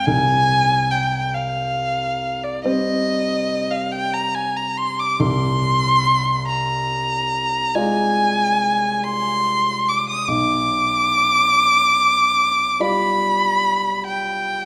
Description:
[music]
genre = classical, romantic duo for violin and grand piano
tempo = 47 BPM (dotted quarters)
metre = 12/8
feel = rubato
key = C minor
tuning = A4 = 440 Hz
[part]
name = dark violin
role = melody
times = 0.0-14.7 s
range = D5 to Eb6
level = -20 LUFS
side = equal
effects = none
[part]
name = dark baby grand piano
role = accompaniment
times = 0.0-14.7 s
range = B1 to D5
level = -26 LUFS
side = equal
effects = none
[sound]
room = wet recital hall reverb, RT60 1.7 s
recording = none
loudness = -19 LUFS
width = mono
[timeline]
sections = 0.0-14.7 A section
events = none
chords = 0.1 Cm; 5.2 Dm7b5/C; 10.3 G7/B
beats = | 0.06 1.35 2.64 3.92 | 5.19 6.46 7.74 9.03 | 10.28 11.53 12.80 14.07

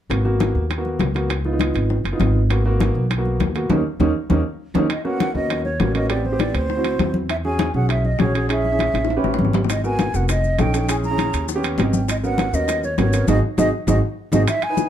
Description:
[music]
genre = Afro-Cuban jazz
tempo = 200 BPM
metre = 4/4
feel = straight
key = G# dorian, G# minor from 4.9 s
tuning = A4 = 440 Hz
[part]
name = warm grand piano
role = accompaniment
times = 0.1-14.9 s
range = A#3 to G5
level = -24 LUFS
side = right 1 dB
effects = none
[part]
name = upright bass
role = bass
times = 0.1-14.4 s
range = E#1 to E2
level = -21 LUFS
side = equal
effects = none
[part]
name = bongos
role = percussion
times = 0.1-14.9 s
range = none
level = -28 LUFS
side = left 8 dB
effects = none
[part]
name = congas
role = percussion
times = 0.1-14.9 s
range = none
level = -26 LUFS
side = left 2 dB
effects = none
[part]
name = timbales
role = percussion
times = 0.1-14.9 s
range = none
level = -28 LUFS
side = right 7 dB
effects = none
[part]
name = breathy concert flute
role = melody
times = 4.9-14.9 s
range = C5 to A#5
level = -24 LUFS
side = right 2 dB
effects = plate reverb
[part]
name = maracas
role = percussion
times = 9.7-14.9 s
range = none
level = -35 LUFS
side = left 8 dB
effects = none
[sound]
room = light reverb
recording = dark, warm production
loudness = -17 LUFS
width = side -10 dB against mid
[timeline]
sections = 0.1-4.9 A section; 4.9-14.5 B section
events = band accent 3.7-4.9, 13.3-14.5; drum fill 4.0-4.9, 8.9-9.7, 13.7-14.5; grand piano fill 11.6-12.1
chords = 0.1 G#m7; 1.3 C#7; 2.5 G#m7; 3.7 D#5; 4.9 Bmaj9; 6.1 Am7; 6.7 D9; 7.3 E69; 8.5 A#m7b5; 9.1 A9; 9.7 G#m9; 10.3 F7b13; 10.9 A#m7b5; 11.5 D#7b13; 12.1 G#m11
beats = | 0.10 0.41 0.70 1.00 | 1.30 1.60 1.91 2.21 | 2.50 2.80 3.10 3.40 | 3.70 4.00 4.30 4.60 | 4.90 5.20 5.50 5.80 | 6.10 6.40 6.70 7.00 | 7.30 7.60 7.90 8.20 | 8.50 8.79 9.09 9.39 | 9.69 9.99 10.29 10.59 | 10.89 11.19 11.49 11.79 | 12.09 12.39 12.69 12.98 | 13.28 13.58 13.88 14.18 | 14.48 14.78

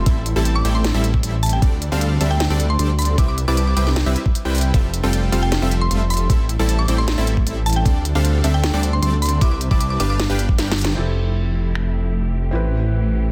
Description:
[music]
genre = future bass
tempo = 154 BPM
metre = 4/4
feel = half-time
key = unclear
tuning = A4 = 440 Hz
[part]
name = supersaw stab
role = riff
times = 0.0-11.0 s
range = G3 to A5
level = -26 LUFS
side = equal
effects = sidechain pumping, tape echo
[part]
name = detuned saw bass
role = bass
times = 0.0-13.3 s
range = F1 to D2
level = -21 LUFS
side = equal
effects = chorus, sidechain pumping
[part]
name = electronic kick drum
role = drums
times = 0.1-10.6 s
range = none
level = -19 LUFS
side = equal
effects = studio ambience
[part]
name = trap drum kit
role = drums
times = 0.1-11.8 s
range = crash cymbal, finger snaps, hi-hat, snare drum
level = -28 LUFS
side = equal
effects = low-pass filter on hats, studio ambience, low-pass filter on snare, low-pass filter on cymbals
[part]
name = mallet-like synth pluck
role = melody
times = 0.6-10.2 s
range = G5 to D6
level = -29 LUFS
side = equal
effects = chorus, sidechain pumping, tape echo
[part]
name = felt-muted upright piano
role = accompaniment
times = 11.0-13.3 s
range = C4 to B4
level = -31 LUFS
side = equal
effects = sidechain pumping, tape echo
[part]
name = clear studio string section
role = sustained chords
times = 11.0-13.3 s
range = E3 to G4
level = -33 LUFS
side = equal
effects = sidechain pumping, low-pass filter
[sound]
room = light reverb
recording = dense, heavily limited modern master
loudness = -19 LUFS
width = mono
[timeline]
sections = 0.0-11.0 A section; 11.0-13.3 B section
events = drop 0.0-11.0; drum fill 10.6-11.0; band accent 10.8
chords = 0.1 Am7; 1.6 D7sus4; 3.2 Cmaj7; 4.7 Fmaj9; 6.3 Am7; 7.9 D7sus4; 9.4 Cmaj7; 10.2 G7; 11.0 Fmaj9; 12.5 Am7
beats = | 0.06 0.45 0.84 1.23 | 1.62 2.01 2.40 2.79 | 3.18 3.57 3.96 4.35 | 4.74 5.13 5.52 5.91 | 6.30 6.69 7.08 7.47 | 7.86 8.25 8.64 9.03 | 9.41 9.80 10.19 10.58 | 10.97 11.36 11.75 12.14 | 12.53 12.92 13.31

